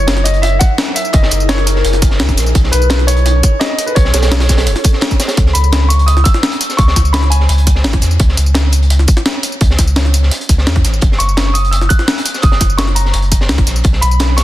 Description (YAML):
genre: liquid drum and bass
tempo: 170 BPM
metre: 4/4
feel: straight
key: unclear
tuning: A4 = 440 Hz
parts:
  - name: warm grand piano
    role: melody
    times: 0.0-8.0, 11.2-14.4 s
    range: A#4 to F#6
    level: -19 LUFS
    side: equal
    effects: ping-pong delay
  - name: ethereal airy pad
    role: sustained chords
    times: 0.0-5.3 s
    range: C#4 to A#4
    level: -23 LUFS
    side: equal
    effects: ensemble chorus, built-in reverb, phaser
  - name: warm sub bass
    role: bass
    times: 0.0-14.4 s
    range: E1 to E2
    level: -12 LUFS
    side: equal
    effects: none
  - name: breakbeat sampler-style drum kit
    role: drums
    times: 0.1-14.4 s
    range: hi-hat, snare drum, tambourine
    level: -18 LUFS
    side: equal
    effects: none
  - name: crunchy breakbeat drum kit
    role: drums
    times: 0.1-14.4 s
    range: hi-hat, snare drum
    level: -22 LUFS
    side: equal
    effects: high-pass filter on hats, high-pass filter on snare, high-pass filter on room
  - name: electronic kick drum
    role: drums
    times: 0.6-13.9 s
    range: none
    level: -11 LUFS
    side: equal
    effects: overdrive
room: light reverb, small room ambience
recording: dense, heavily limited modern master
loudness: -10 LUFS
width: side -14 dB against mid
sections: 0.0-5.4 A section; 5.4-14.4 A section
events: drop 0.0-5.4, 5.4-14.4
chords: 0.0 F#13; 2.5 B13; 5.4 N.C.; 11.0 F#; 13.8 N.C.